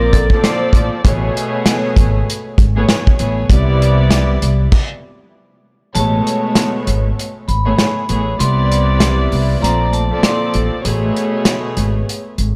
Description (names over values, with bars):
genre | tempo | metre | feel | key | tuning
hip hop, boom-bap hip-hop | 98 BPM | 4/4 | swing 58% on 16ths | unclear | A4 = 440 Hz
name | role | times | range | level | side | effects
vibraphone with hard mallets | melody | 0.0-0.7, 5.9-10.5 s | A4 to C6 | -25 LUFS | equal | high-pass filter, low-pass filter, tape echo
warm chamber string section | accompaniment | 0.0-12.4 s | A2 to D5 | -21 LUFS | equal | cassette tape, high-pass filter, low-pass filter
upright bass | bass | 0.0-12.6 s | G#1 to C2 | -18 LUFS | equal | none
warm soul drum kit | drums | 0.1-12.5 s | crash cymbal, hi-hat, kick drum, snare drum | -17 LUFS | equal | none
room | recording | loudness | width
small room ambience | none | -15 LUFS | mono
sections
0.0-5.9 A section; 5.9-12.6 B section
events
stop 4.7-5.9; kick muted 5.9-12.6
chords
0.0 Bbmaj9; 1.0 Amaj9; 3.5 Cmaj9; 4.7 N.C.; 5.9 Amaj9; 8.4 Cmaj9; 9.6 Bbmaj9; 10.8 Amaj9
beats
0.43 | 1.05 1.66 2.27 2.88 | 3.50 4.11 4.72 5.33 | 5.95 6.56 7.17 7.78 | 8.39 9.01 9.62 10.23 | 10.84 11.46 12.07